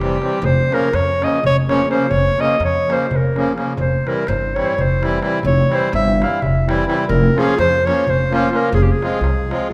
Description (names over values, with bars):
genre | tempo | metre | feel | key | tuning
balkan folk, Balkan wedding band | 252 BPM (eighths) | 7/8 | straight | unclear | A4 = 439 Hz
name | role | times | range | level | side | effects
warm clarinet | melody | 0.0-9.7 s | G4 to F5 | -21 LUFS | equal | none
accordion | accompaniment | 0.0-9.7 s | C3 to F4 | -23 LUFS | equal | none
upright bass | bass | 0.0-9.7 s | F1 to F2 | -24 LUFS | equal | none
darbuka | percussion | 0.0-9.6 s | none | -24 LUFS | equal | none
room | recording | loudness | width
wet recital hall reverb, RT60 1.6 s | none | -17 LUFS | mono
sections
0.0-9.7 A section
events
none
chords
0.4 Bbm/F; 3.8 C/F; 7.1 Bbm/F; 8.7 Fm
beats
0.19 | 0.43 0.67 0.91 1.15 1.39 1.63 1.86 | 2.10 2.34 2.58 2.82 3.06 3.30 3.54 | 3.77 4.01 4.25 4.49 4.73 4.96 5.20 | 5.44 5.68 5.91 6.15 6.39 6.62 6.86 | 7.10 7.33 7.57 7.80 8.04 8.27 8.51 | 8.74 8.97 9.21 9.44 9.67